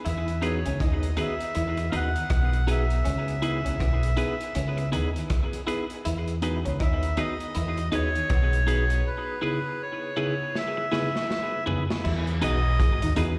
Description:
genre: lovers rock reggae.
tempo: 80 BPM.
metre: 4/4.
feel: swing 61% on 16ths.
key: E major.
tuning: A4 = 440 Hz.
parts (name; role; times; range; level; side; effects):
electric guitar through a small old amp; riff; 0.0-13.3 s; G#3 to E4; -39 LUFS; equal; ensemble chorus, dub echo, slapback echo.
melodica; melody; 0.1-13.1 s; B4 to F#5; -34 LUFS; equal; tape echo, plate reverb, slapback echo.
fingered electric bass; bass; 0.1-13.4 s; G#1 to E2; -28 LUFS; equal; none.
crunchy breakbeat drum kit; drums; 0.1-13.4 s; crash cymbal, hi-hat, kick drum, rim click, snare drum, toms; -33 LUFS; equal; none.
mellow tine electric piano; accompaniment; 0.4-13.3 s; C#3 to G#4; -36 LUFS; equal; dub echo, plate reverb, slapback echo.
clean electric guitar; stabs; 0.4-13.3 s; D#4 to B4; -36 LUFS; equal; dub echo, plate reverb, slapback echo.
room: light reverb.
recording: live gig heard through the venue's PA, recital hall reverb.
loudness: -26 LUFS.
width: mono.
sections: 0.0-12.0 A section; 12.0-13.4 B section.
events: break 9.0-12.0; drum fill 10.5-12.0.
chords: 0.1 Emaj7; 3.1 C#m7; 6.0 Emaj7; 9.0 C#m7; 12.0 Emaj7.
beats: | 0.05 0.80 1.55 2.30 | 3.05 3.80 4.55 5.30 | 6.05 6.80 7.55 8.30 | 9.05 9.80 10.54 11.29 | 12.04 12.79.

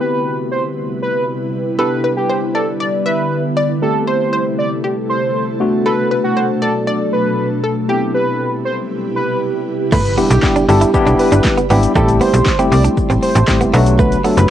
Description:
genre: dance-pop.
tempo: 118 BPM.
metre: 4/4.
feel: straight.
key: G major.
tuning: A4 = 440 Hz.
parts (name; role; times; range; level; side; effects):
octave-doubled lead; melody; 0.0-14.5 s; F#4 to D5; -20 LUFS; right 2 dB; chorus, cassette tape, plate reverb, analog delay.
tine electric piano; accompaniment; 0.0-14.5 s; F#3 to A4; -18 LUFS; left 2 dB; medium stereo tremolo, sidechain pumping, cassette tape, plate reverb.
ethereal airy pad; sustained chords; 0.0-14.5 s; B2 to D6; -21 LUFS; right 1 dB; ensemble chorus, built-in reverb, sidechain pumping, cassette tape, plate reverb.
analog pluck; melody; 1.8-9.4 s; G4 to E5; -21 LUFS; left 3 dB; chorus, cassette tape, plate reverb, analog delay.
direct-recorded clean electric guitar; riff; 9.9-14.4 s; A3 to E4; -19 LUFS; right 4 dB; wide subtle chorus, cassette tape.
slap-like FM bass; bass; 9.9-14.5 s; F#1 to C2; -13 LUFS; equal; sidechain pumping.
house drum kit; drums; 9.9-14.5 s; crash cymbal, handclaps, hi-hat, kick drum, shaker, snare drum; -18 LUFS; equal; overdrive, cassette tape.
impact; sound effects; 10.0-12.0 s; none; -29 LUFS; equal; none.
room: light reverb.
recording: home recording on cassette.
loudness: -13 LUFS.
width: side -10 dB against mid.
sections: 0.0-9.9 A section; 9.9-14.5 B section.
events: drop 9.9-14.5; impact 9.9-12.0.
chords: 0.0 Cmaj7; 1.8 G6; 3.8 Am7; 5.6 Bm7; 7.9 Cmaj7; 9.9 G6; 12.0 Am7; 13.7 Bm7.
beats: 0.26 0.77 1.28 | 1.79 2.30 2.80 3.31 | 3.82 4.33 4.84 5.35 | 5.86 6.36 6.87 7.38 | 7.89 8.40 8.91 9.41 | 9.92 10.43 10.94 11.45 | 11.96 12.46 12.97 13.48 | 13.99 14.50.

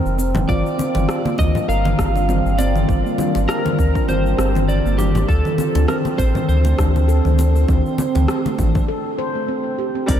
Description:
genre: organic downtempo.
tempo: 100 BPM.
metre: 4/4.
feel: swing 56% on 16ths.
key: unclear.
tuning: A4 = 440 Hz.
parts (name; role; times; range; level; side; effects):
handpan; arpeggios; 0.0-10.2 s; A3 to C5; -23 LUFS; right 1 dB; tape echo.
warm sub bass; bass; 0.1-10.2 s; F1 to D2; -18 LUFS; equal; sidechain pumping.
deep house drum kit; drums; 0.1-10.2 s; congas, hi-hat, rim click, shaker; -24 LUFS; equal; overdrive.
congas; percussion; 0.3-8.9 s; none; -28 LUFS; left 2 dB; none.
electric slide guitar; melody; 0.5-10.2 s; G4 to F5; -26 LUFS; right 1 dB; analog chorus, tape echo.
ethereal airy pad; sustained chords; 1.7-10.2 s; D3 to C5; -28 LUFS; right 2 dB; ensemble chorus, built-in reverb, sidechain pumping.
electronic kick drum; drums; 0.5-10.2 s; none; -20 LUFS; equal; overdrive.
quartz singing bowl; texture; 0.5-8.9 s; F4 to F5; -34 LUFS; left 3 dB; none.
felt-muted upright piano; accompaniment; 10.1-10.2 s; G3 to Bb4; -21 LUFS; left 2 dB; sidechain pumping.
room: moderate huge ambient reverb, RT60 8.6 s.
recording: dreamy mix soaked in reverb.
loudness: -16 LUFS.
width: side -10 dB against mid.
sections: 0.0-10.1 A section.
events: break 8.9-10.1.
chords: 0.5 Gm7; 5.3 Dm7.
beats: | 0.49 1.09 1.69 2.29 | 2.89 3.49 4.09 4.69 | 5.29 5.89 6.49 7.09 | 7.69 8.29 8.89 9.49 | 10.09.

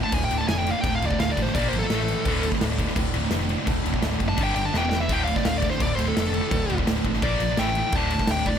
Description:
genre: heavy metal.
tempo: 169 BPM.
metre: 4/4.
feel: straight.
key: D minor.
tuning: A4 = 440 Hz.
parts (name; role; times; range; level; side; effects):
high-gain lead guitar; melody; 0.0-8.6 s; A4 to A5; -27 LUFS; left 1 dB; distortion, digital delay.
distorted electric guitar; riff; 0.0-8.6 s; D2 to Bb3; -31 LUFS; equal; overdrive.
high-gain distorted guitar; riff; 0.0-8.6 s; D2 to Bb3; -30 LUFS; left 12 dB; distortion.
scooped high-gain guitar; riff; 0.0-8.6 s; D2 to Bb3; -29 LUFS; right 12 dB; distortion.
overdriven picked electric bass; bass; 0.1-8.5 s; D1 to Bb1; -28 LUFS; equal; none.
big rock drum kit; drums; 0.1-8.6 s; crash cymbal, kick drum, snare drum; -27 LUFS; equal; none.
room: small room ambience.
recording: none.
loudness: -21 LUFS.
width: side -8 dB against mid.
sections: 0.0-8.6 A section.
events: lead electric guitar solo 0.0-8.6; drum fill 4.7-5.1.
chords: 0.0 Dm; 1.6 Bb5; 1.9 A5; 2.3 D5; 4.4 G5; 4.7 E5; 5.1 D5; 7.2 Bb5; 7.6 A5; 7.9 D5.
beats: 0.13 0.49 | 0.84 1.20 1.55 1.91 | 2.26 2.62 2.97 3.33 | 3.68 4.04 4.39 4.75 | 5.10 5.46 5.82 6.17 | 6.53 6.88 7.24 7.59 | 7.95 8.30.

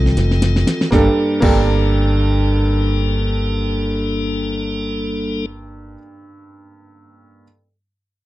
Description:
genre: piano-driven pop.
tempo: free time.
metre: none.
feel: none.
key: G minor.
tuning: A4 = 445 Hz.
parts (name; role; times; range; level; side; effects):
bright upright piano; accompaniment; 0.0-7.4 s; G2 to Eb5; -22 LUFS; right 3 dB; none.
tonewheel organ; sustained chords; 0.0-5.5 s; Eb3 to A4; -22 LUFS; left 2 dB; slow rotary speaker.
fingered electric bass; bass; 0.0-6.0 s; F1 to C2; -18 LUFS; equal; none.
pop drum kit; drums; 0.1-1.6 s; crash cymbal, hi-hat, kick drum, snare drum; -18 LUFS; equal; none.
room: little or no reverb.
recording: dry, close 1970s-style studio recording.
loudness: -15 LUFS.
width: side -16 dB against mid.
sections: 0.9-4.9 A section.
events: drum fill 0.0-0.9.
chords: 0.0 F7; 0.9 Gmadd9.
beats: free time.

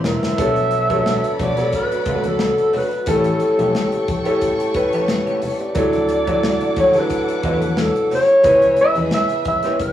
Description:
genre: lush 1970s-style soul.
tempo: 89 BPM.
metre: 4/4.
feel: swing 54% on 16ths.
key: B minor.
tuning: A4 = 437 Hz.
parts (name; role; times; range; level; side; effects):
warm studio violin section; second line; 0.0-9.9 s; E4 to D6; -31 LUFS; equal; none.
clear concert grand piano; accompaniment; 0.0-9.8 s; E3 to C#5; -21 LUFS; equal; none.
mellow French horn section; sustained chords; 0.0-9.9 s; A#2 to G4; -32 LUFS; equal; none.
electric guitar through a small old amp; riff; 0.0-9.8 s; A3 to E5; -28 LUFS; right 2 dB; none.
fingered electric bass; bass; 0.0-9.9 s; E1 to D3; -26 LUFS; left 1 dB; none.
modern studio drum kit; drums; 0.0-9.9 s; hi-hat, kick drum, snare drum; -26 LUFS; left 1 dB; none.
warm alto saxophone; melody; 0.1-9.9 s; A4 to E5; -18 LUFS; equal; none.
congas; percussion; 0.1-9.9 s; none; -32 LUFS; left 1 dB; none.
room: wet booth ambience, RT60 0.2 s.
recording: rough rehearsal-room recording, small room ambience.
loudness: -15 LUFS.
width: side -11 dB against mid.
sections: 0.4-9.9 A section.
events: drum fill 0.0-0.4.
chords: 0.4 Bm9; 3.1 A7; 5.8 Dmaj9; 8.4 C#m7.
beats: | 0.38 1.05 1.73 2.40 | 3.07 3.74 4.42 5.09 | 5.76 6.43 7.10 7.77 | 8.45 9.12 9.79.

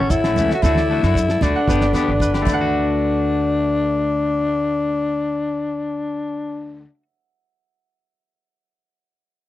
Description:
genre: highlife guitar band.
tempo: 114 BPM.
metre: 4/4.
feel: straight.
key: D major.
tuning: A4 = 439 Hz.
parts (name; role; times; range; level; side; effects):
growling tenor saxophone; melody; 0.0-6.9 s; C#4 to F#4; -20 LUFS; left 3 dB; none.
concert harp; arpeggios; 0.0-6.9 s; A4 to F#5; -26 LUFS; right 6 dB; slapback echo.
upright bass; bass; 0.0-6.8 s; G1 to F#2; -24 LUFS; right 1 dB; none.
damped 70s drum kit; drums; 0.1-2.6 s; crash cymbal, kick drum, snare drum; -23 LUFS; right 1 dB; none.
congas; percussion; 0.1-3.0 s; none; -27 LUFS; right 3 dB; none.
shekere; percussion; 0.1-3.0 s; none; -28 LUFS; left 2 dB; none.
clean electric guitar; accompaniment; 0.2-7.0 s; E3 to G4; -27 LUFS; left 4 dB; none.
agogo bells; percussion; 0.2-2.8 s; none; -34 LUFS; left 14 dB; none.
room: little or no reverb.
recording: dry, close 1970s-style studio recording.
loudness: -17 LUFS.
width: side -14 dB against mid.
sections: 0.0-2.7 A section; 2.7-7.0 B section.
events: none.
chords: 0.0 A; 0.6 D; 1.7 G; 2.5 D.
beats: 0.10 | 0.63 1.15 1.68 2.21 | 2.73 3.26 3.79 4.32 | 4.85 5.37 5.90 6.43.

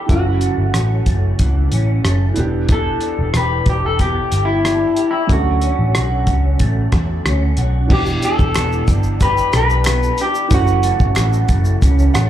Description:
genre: indie pop, bedroom pop.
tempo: 92 BPM.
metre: 4/4.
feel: straight.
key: E dorian.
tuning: A4 = 440 Hz.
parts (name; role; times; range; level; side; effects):
electric guitar through a small old amp; accompaniment; 0.0-12.3 s; F#2 to G4; -25 LUFS; right 1 dB; ensemble chorus, warbly pitch drift, slapback echo.
warm upright piano; accompaniment; 0.0-12.3 s; E3 to F#5; -26 LUFS; right 5 dB; cassette tape, slapback echo.
electric guitar through a small old amp; melody; 0.1-11.8 s; E4 to B4; -20 LUFS; left 1 dB; lush chorus, slapback echo, analog delay.
vintage muted picked electric bass; bass; 0.1-12.3 s; E1 to E2; -17 LUFS; equal; none.
cloth-damped thuddy drum kit; drums; 0.1-12.3 s; crash cymbal, hi-hat, kick drum, rim click, shaker; -18 LUFS; equal; none.
group handclap; percussion; 8.6-11.3 s; none; -29 LUFS; right 1 dB; none.
room: small room ambience.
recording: live gig heard through the venue's PA, club reverb.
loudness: -14 LUFS.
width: side -11 dB against mid.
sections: 0.0-7.9 A section; 7.9-12.3 B section.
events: upright piano fill 11.8-12.3.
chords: 0.1 F#m7; 2.4 Em7; 5.3 Dmaj7; 7.9 Em7; 10.5 F#m7.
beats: | 0.09 0.74 1.39 2.04 | 2.69 3.35 4.00 4.65 | 5.30 5.95 6.60 7.26 | 7.91 8.56 9.21 9.86 | 10.51 11.17 11.82.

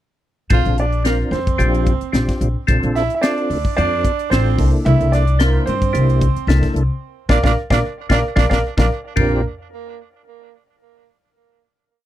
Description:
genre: electric jazz fusion.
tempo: 111 BPM.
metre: 4/4.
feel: swing 54% on 16ths.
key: Bb lydian.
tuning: A4 = 440 Hz.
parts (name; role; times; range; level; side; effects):
warm concert grand piano; melody; 0.5-9.4 s; Bb4 to F5; -23 LUFS; right 1 dB; none.
growling tenor saxophone; second line; 0.5-9.4 s; Bb3 to F4; -26 LUFS; right 16 dB; tape echo.
percussive tonewheel organ; accompaniment; 0.5-9.4 s; Bb3 to C5; -21 LUFS; left 1 dB; slow rotary speaker, chorus vibrato.
upright bass; bass; 0.5-9.4 s; A1 to G2; -17 LUFS; equal; none.
crisp fusion drum kit; drums; 0.5-9.3 s; hi-hat, kick drum, ride cymbal, snare drum, toms; -20 LUFS; equal; none.
room: little or no reverb.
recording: dry, close 1970s-style studio recording.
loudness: -15 LUFS.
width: side -13 dB against mid.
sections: 0.5-9.2 A section; 9.2-11.3 final chord.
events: drum fill 7.0-9.2; band accent 7.0-9.2.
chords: 0.5 Bbmaj9; 4.6 C13; 7.0 Bb; 9.2 Bb69.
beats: | 0.51 1.06 1.60 2.15 | 2.69 3.24 3.78 4.33 | 4.87 5.41 5.95 6.49 | 7.03 7.57 8.11 8.64 | 9.18.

